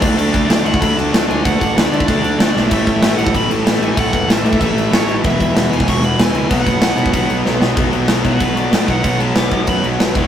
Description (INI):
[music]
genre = punk rock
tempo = 190 BPM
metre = 4/4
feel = straight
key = unclear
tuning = A4 = 440 Hz
[part]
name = dark smooth lead guitar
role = melody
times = 0.0-10.3 s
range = E4 to D6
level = -23 LUFS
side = right 1 dB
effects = overdrive
[part]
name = cranked stack guitar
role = riff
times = 0.0-10.3 s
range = E2 to D4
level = -21 LUFS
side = left 6 dB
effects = overdrive
[part]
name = distorted electric guitar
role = riff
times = 0.0-10.3 s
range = E2 to D4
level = -25 LUFS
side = right 6 dB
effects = overdrive
[part]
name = thick fuzz guitar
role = riff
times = 0.0-10.3 s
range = E2 to D4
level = -22 LUFS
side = right 1 dB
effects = distortion
[part]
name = fuzz picked electric bass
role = bass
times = 0.0-10.3 s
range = E1 to D3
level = -20 LUFS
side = equal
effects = overdrive
[part]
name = big rock drum kit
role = drums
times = 0.0-10.2 s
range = crash cymbal, kick drum, snare drum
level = -16 LUFS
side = equal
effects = none
[sound]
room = light reverb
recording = rough rehearsal-room recording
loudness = -13 LUFS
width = side -9 dB against mid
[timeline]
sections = 0.0-7.8 A section; 7.8-10.3 B section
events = drum fill 2.6, 7.5-7.8; lead electric guitar solo 7.8-10.3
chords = 0.0 D5; 2.7 A5; 5.2 E5; 6.5 B5